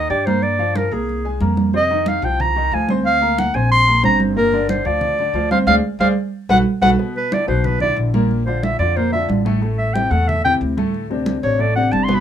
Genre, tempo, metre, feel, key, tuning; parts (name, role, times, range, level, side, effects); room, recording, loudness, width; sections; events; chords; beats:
Afro-Cuban jazz; 183 BPM; 4/4; straight; E minor from 7.0 s; A4 = 440 Hz
clear clarinet; melody; 0.0-12.2 s; Ab4 to C6; -18 LUFS; equal
clear concert grand piano; accompaniment; 0.0-12.2 s; A2 to C6; -23 LUFS; left 3 dB
upright bass; bass; 0.0-12.2 s; G1 to G2; -22 LUFS; left 1 dB
congas; percussion; 0.1-12.2 s; -22 LUFS; right 4 dB
moderate small room reverb, RT60 0.5 s; minimal, uncompressed stereo recording; -15 LUFS; side -9 dB against mid
0.0-7.0 A section; 7.0-12.2 B section
band accent 5.7-7.0; clarinet solo 7.0-12.2
0.4 Gm7; 1.1 Fmadd11/C; 1.7 F5; 3.1 Gmadd11; 4.4 Gm7; 5.7 D7(b5, no3); 6.3 B5; 7.0 E5; 8.3 A#; 9.6 Am; 10.9 D5
0.10 | 0.43 0.76 1.08 1.41 | 1.74 2.07 2.40 2.73 | 3.05 3.38 3.71 4.04 | 4.37 4.69 5.02 5.35 | 5.68 6.01 6.33 6.66 | 6.99 7.32 7.65 7.98 | 8.30 8.63 8.96 9.29 | 9.62 9.95 10.28 10.61 | 10.94 11.26 11.59 11.92